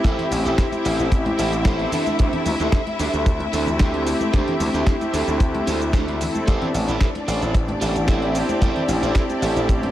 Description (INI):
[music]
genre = nu-disco, nu disco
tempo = 112 BPM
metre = 4/4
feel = straight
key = A minor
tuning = A4 = 440 Hz
[part]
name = warm analog pad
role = accompaniment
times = 0.0-9.9 s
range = A3 to A4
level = -25 LUFS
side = equal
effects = chorus, analog delay
[part]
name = warm symphonic string section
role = sustained chords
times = 0.0-9.9 s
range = D4 to E5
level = -27 LUFS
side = left 2 dB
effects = sidechain pumping
[part]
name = electric guitar at the edge of break-up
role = riff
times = 0.0-9.7 s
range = D4 to C5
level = -27 LUFS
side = right 3 dB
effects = lush chorus, analog delay
[part]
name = gritty slap bass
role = bass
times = 0.0-9.9 s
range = A1 to D2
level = -25 LUFS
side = equal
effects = overdrive
[part]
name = kick drum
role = drums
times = 0.0-9.8 s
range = none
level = -19 LUFS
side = equal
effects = none
[part]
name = dusty soul sampler-style drum kit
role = drums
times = 0.1-9.9 s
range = hi-hat, shaker, snare drum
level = -31 LUFS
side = equal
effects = none
[part]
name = congas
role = percussion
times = 0.2-9.9 s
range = none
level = -31 LUFS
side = left 1 dB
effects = none
[sound]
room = light reverb, small room ambience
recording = none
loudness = -18 LUFS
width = side -13 dB against mid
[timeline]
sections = 0.0-9.9 A section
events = none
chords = 0.0 Am7; 1.9 D7sus4; 6.5 Am7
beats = | 0.05 0.58 1.12 1.65 | 2.19 2.73 3.26 3.80 | 4.33 4.87 5.40 5.94 | 6.48 7.01 7.55 8.08 | 8.62 9.15 9.69